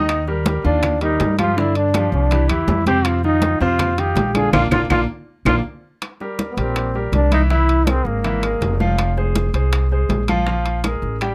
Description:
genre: Afro-Cuban jazz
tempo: 162 BPM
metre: 4/4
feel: straight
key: unclear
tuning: A4 = 440 Hz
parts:
  - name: bright trombone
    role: melody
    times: 0.0-8.8 s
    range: Bb3 to Ab4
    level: -22 LUFS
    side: equal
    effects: none
  - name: clear grand piano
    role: accompaniment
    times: 0.0-11.3 s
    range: C3 to G5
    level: -25 LUFS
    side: equal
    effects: none
  - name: upright bass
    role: bass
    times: 0.0-11.3 s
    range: F1 to G2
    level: -22 LUFS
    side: equal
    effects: none
  - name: bongos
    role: percussion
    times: 0.1-11.3 s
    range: none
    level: -31 LUFS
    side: equal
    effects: none
  - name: claves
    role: percussion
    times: 0.1-11.0 s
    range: none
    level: -32 LUFS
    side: equal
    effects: none
  - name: congas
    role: percussion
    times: 0.1-11.3 s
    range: none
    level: -28 LUFS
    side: equal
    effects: none
  - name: timbales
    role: percussion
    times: 0.1-11.3 s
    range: none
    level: -30 LUFS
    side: equal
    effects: none
room: little or no reverb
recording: close, detailed microphones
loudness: -18 LUFS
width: mono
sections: 0.0-6.0 A section; 6.0-11.3 B section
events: trombone solo 0.0-6.0; band accent 4.5-6.0; drum fill 5.1-6.0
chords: 0.1 Ebmaj9; 1.6 G5; 2.3 C; 3.1 F9sus4; 4.5 Bb; 6.0 Bbsus2; 7.5 Caug7; 9.0 Fm; 10.5 Bb5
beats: | 0.09 0.46 0.83 1.20 | 1.57 1.94 2.31 2.68 | 3.05 3.42 3.79 4.16 | 4.53 4.90 5.28 5.65 | 6.02 6.39 6.76 7.13 | 7.50 7.87 8.24 8.62 | 8.99 9.36 9.73 10.10 | 10.47 10.84 11.21

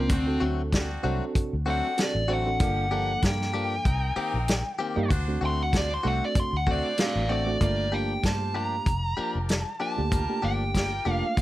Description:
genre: straight-eighth soul blues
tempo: 96 BPM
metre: 4/4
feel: swing 56% on 16ths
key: G minor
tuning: A4 = 440 Hz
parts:
  - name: dark smooth lead guitar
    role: melody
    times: 0.0-11.4 s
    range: C4 to C6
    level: -29 LUFS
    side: equal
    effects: overdrive
  - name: reed electric piano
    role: accompaniment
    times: 0.0-11.4 s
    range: F3 to C5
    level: -32 LUFS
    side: right 4 dB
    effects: overdrive
  - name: vintage muted fingered electric bass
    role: bass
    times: 0.0-11.4 s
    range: F1 to G2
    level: -29 LUFS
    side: equal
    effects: none
  - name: bright horn section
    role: sustained chords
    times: 0.1-11.2 s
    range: F3 to C5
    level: -39 LUFS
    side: left 1 dB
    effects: none
  - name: warm soul drum kit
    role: drums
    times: 0.1-11.4 s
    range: hi-hat, kick drum, snare drum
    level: -26 LUFS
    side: equal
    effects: none
  - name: direct-recorded clean electric guitar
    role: stabs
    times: 0.4-11.3 s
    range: Eb3 to G4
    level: -34 LUFS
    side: left 4 dB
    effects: spring reverb
room: light reverb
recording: none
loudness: -24 LUFS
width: side -15 dB against mid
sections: 0.0-7.6 A section; 7.6-11.4 B section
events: lead electric guitar solo 0.0-7.6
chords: 0.1 D7; 2.6 Gm7; 3.9 Cm7; 5.1 D7; 7.6 Gm7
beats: | 0.10 0.73 1.35 1.98 | 2.61 3.23 3.86 4.48 | 5.11 5.74 6.36 6.99 | 7.61 8.24 8.87 9.49 | 10.12 10.75 11.37

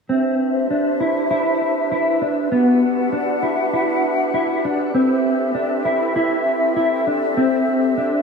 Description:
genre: dream pop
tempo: 99 BPM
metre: 4/4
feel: straight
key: unclear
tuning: A4 = 440 Hz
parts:
  - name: large flute ensemble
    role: sustained chords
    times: 0.1-8.2 s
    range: C4 to F#5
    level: -20 LUFS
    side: equal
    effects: shimmer reverb
  - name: mellow electric guitar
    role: arpeggios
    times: 0.1-8.2 s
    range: B3 to E4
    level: -19 LUFS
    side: equal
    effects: ensemble chorus, ping-pong delay, shimmer reverb
room: wet echo chamber reverb, RT60 1.3 s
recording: none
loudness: -16 LUFS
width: side -5 dB against mid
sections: 0.1-8.2 A section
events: none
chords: 0.1 Cmaj9; 2.5 Gmaj7; 4.9 Am9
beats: | 0.09 0.70 1.30 1.91 | 2.51 3.12 3.73 4.33 | 4.94 5.54 6.15 6.76 | 7.36 7.97

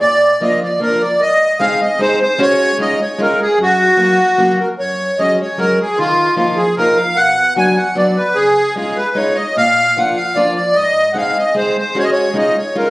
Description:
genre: musette waltz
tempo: 151 BPM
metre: 3/4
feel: straight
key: F# major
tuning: A4 = 440 Hz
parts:
  - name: accordion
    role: melody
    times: 0.0-12.9 s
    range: E#4 to G#5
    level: -13 LUFS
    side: equal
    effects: light tremolo tuning, plate reverb
  - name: picked plugged-in steel-string acoustic guitar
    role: accompaniment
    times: 0.0-12.9 s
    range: F#2 to G#4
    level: -19 LUFS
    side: equal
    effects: none
room: wet studio reverb, RT60 0.6 s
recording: recorded on a phone in the room, club reverb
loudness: -12 LUFS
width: side -20 dB against mid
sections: 0.0-4.8 A section; 4.8-12.9 A section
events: none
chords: 0.0 A#; 1.2 G#; 2.4 C#sus4; 2.8 C#add9; 3.6 F#; 4.8 F#sus2; 6.0 D#sus2; 7.2 Bm; 8.4 C#add9; 9.6 A#; 10.8 G#; 12.0 C#sus4; 12.4 C#add9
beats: | 0.01 0.41 0.81 | 1.21 1.60 2.00 | 2.40 2.79 3.19 | 3.59 3.98 4.39 | 4.79 5.19 5.58 | 5.98 6.38 6.78 | 7.17 7.57 7.97 | 8.37 8.77 9.17 | 9.57 9.97 10.37 | 10.77 11.17 11.57 | 11.96 12.36 12.75

